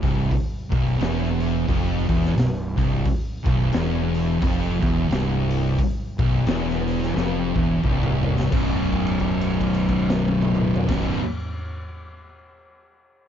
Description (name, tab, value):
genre	stoner and doom metal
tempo	88 BPM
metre	4/4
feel	swing 59% on 8ths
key	unclear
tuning	A4 = 440 Hz
part	thick fuzz guitar	riff	0.0-11.2 s	B1 to B2	-26 LUFS	left 8 dB	distortion
part	thick fuzz guitar	riff	0.0-11.2 s	B1 to B2	-26 LUFS	right 7 dB	distortion
part	thick fuzz guitar	riff	0.0-11.2 s	B1 to B2	-27 LUFS	equal	distortion
part	fuzz fingered electric bass	bass	0.0-11.2 s	B0 to E#1	-28 LUFS	equal	overdrive
part	raw garage drum kit	drums	0.0-11.1 s	crash cymbal, hi-hat, kick drum, snare drum, toms	-26 LUFS	equal	none
room	small room ambience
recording	dark, warm production, nothing above 7.5 kHz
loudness	-20 LUFS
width	side -9 dB against mid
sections	0.0-8.5 A section; 8.5-11.3 B section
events	drum fill 7.2-8.5; held note 8.5-10.8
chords	0.0 Cmaj7/B; 8.5 B5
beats	| 0.32 1.00 1.69 2.37 | 3.06 3.74 4.42 5.11 | 5.79 6.47 7.16 7.84 | 8.53 9.21 9.89 10.57